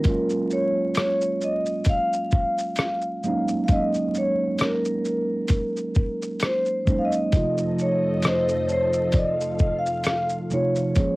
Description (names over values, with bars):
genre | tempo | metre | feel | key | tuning
lo-fi hip hop | 66 BPM | 4/4 | swing 56% on 16ths | unclear | A4 = 440 Hz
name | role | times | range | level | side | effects
vibraphone with medium mallets | melody | 0.0-11.2 s | Bb4 to F5 | -24 LUFS | equal | cassette tape
mellow tine electric piano | accompaniment | 0.0-11.2 s | C3 to Ab4 | -26 LUFS | right 2 dB | fast stereo tremolo, cassette tape
dusty soul sampler-style drum kit | drums | 0.0-11.2 s | hi-hat, kick drum, rim click, shaker | -23 LUFS | equal | overdrive, cassette tape
string machine, cellos | sustained chords | 7.3-10.9 s | F2 to F5 | -30 LUFS | left 1 dB | phaser, ensemble chorus, cassette tape
room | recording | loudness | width
light reverb | home recording on cassette, vinyl crackle | -21 LUFS | side -21 dB against mid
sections
0.0-11.2 A section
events
none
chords
0.1 Gbmaj9; 3.7 Ab9sus4; 7.3 F7